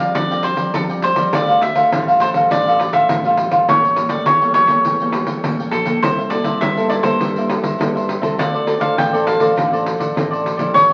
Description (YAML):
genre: samba and choro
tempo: 102 BPM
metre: 4/4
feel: straight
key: D minor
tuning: A4 = 444 Hz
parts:
  - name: cavaquinho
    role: melody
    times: 0.0-10.9 s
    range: A4 to G5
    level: -20 LUFS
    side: equal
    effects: none
  - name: cavaquinho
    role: accompaniment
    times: 0.0-10.9 s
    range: D4 to G5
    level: -22 LUFS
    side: equal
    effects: none
  - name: nylon-string guitar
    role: accompaniment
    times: 0.0-10.9 s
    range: G2 to A4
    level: -26 LUFS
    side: equal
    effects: none
  - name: modern bright fingered electric bass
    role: bass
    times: 0.0-10.9 s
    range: A1 to G2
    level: -29 LUFS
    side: equal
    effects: none
  - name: pandeiro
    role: percussion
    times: 0.1-10.9 s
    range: none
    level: -25 LUFS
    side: equal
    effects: none
room: wet studio reverb, RT60 0.8 s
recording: very old 78 rpm record, vinyl crackle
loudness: -17 LUFS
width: mono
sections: 0.0-10.9 A section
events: none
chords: 0.0 Bb69; 1.3 Dm11; 3.7 A7b9; 6.0 C6; 8.4 Dm7